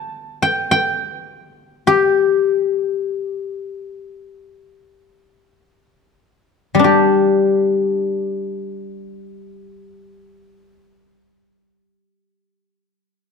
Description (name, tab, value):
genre	chinese traditional, Chinese solo plucked strings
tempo	free time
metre	none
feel	none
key	unclear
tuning	A4 = 440 Hz
part	guzheng	solo	0.0-12.8 s	G3 to A5	-16 LUFS	left 4 dB	none
room	light reverb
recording	close, detailed microphones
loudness	-15 LUFS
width	side -5 dB against mid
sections	0.0-6.9 A section; 6.9-12.3 B section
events	slowing down 0.0-6.9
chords	none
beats	free time